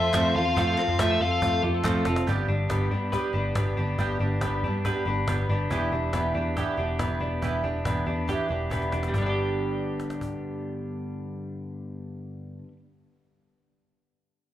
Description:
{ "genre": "jangly indie pop", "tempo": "140 BPM", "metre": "4/4", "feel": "straight", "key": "G mixolydian", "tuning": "A4 = 440 Hz", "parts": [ { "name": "dark smooth lead guitar", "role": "melody", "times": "0.0-1.6 s", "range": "E5 to F5", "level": "-27 LUFS", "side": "left 2 dB", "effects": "overdrive, slapback echo, analog delay" }, { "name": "fingerpicked twelve-string acoustic guitar", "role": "accompaniment", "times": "0.0-12.8 s", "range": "E3 to A4", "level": "-30 LUFS", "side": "right 4 dB", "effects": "slapback echo" }, { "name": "warm symphonic string section", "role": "sustained chords", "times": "0.0-2.2 s", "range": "F4 to C6", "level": "-35 LUFS", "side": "left 2 dB", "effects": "none" }, { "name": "twelve-string electric guitar", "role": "arpeggios", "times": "0.0-12.8 s", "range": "G2 to B4", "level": "-31 LUFS", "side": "left 3 dB", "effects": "slapback echo, analog delay" }, { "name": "vintage muted picked electric bass", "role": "bass", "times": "0.0-12.2 s", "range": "E1 to G2", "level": "-28 LUFS", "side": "equal", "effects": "none" }, { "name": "cajon", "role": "drums", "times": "0.1-10.3 s", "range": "none", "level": "-33 LUFS", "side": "equal", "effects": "slapback echo" }, { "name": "group handclap", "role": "percussion", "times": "0.1-1.9 s", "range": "none", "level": "-39 LUFS", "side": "left 2 dB", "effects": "none" } ], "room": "moderate club reverb, RT60 0.6 s", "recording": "live gig heard through the venue's PA, club reverb", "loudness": "-24 LUFS", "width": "side -12 dB against mid", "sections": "0.0-2.3 A section; 2.3-9.1 B section; 9.1-12.6 C section", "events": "drum fill 1.8-2.3, 8.7-9.1", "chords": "0.0 F; 2.3 G; 5.7 Em7; 9.1 G", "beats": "0.14 | 0.57 0.99 1.42 1.84 | 2.27 2.70 3.13 3.56 | 3.98 4.41 4.84 5.27 | 5.70 6.13 6.56 6.99 | 7.42 7.85 8.28 8.71 | 9.14 9.57 10.00 10.43 | 10.86 11.29 11.72 12.15" }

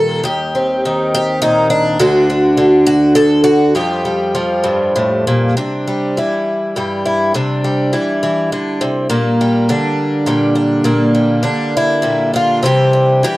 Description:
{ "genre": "folk, solo fingerstyle acoustic guitar", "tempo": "68 BPM (dotted quarters)", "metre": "6/8", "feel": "rubato", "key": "unclear", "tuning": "A4 = 441 Hz", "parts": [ { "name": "picked twelve-string acoustic guitar", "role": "solo", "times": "0.0-13.4 s", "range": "D2 to A4", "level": "-12 LUFS", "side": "equal", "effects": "none" } ], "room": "light reverb", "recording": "dark, warm production", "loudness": "-12 LUFS", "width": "side -18 dB against mid", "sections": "0.0-5.6 A section; 5.6-12.6 B section", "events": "none", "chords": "0.0 Eb6; 2.0 N.C.; 3.7 Fadd9; 5.6 Cadd9; 9.1 Gm/Bb; 12.6 Cadd9", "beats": "| 0.25 1.14 | 2.00 2.86 | 3.75 4.65 | 5.57 6.47 | 7.35 8.24 | 9.12 9.98 | 10.85 11.73 | 12.63" }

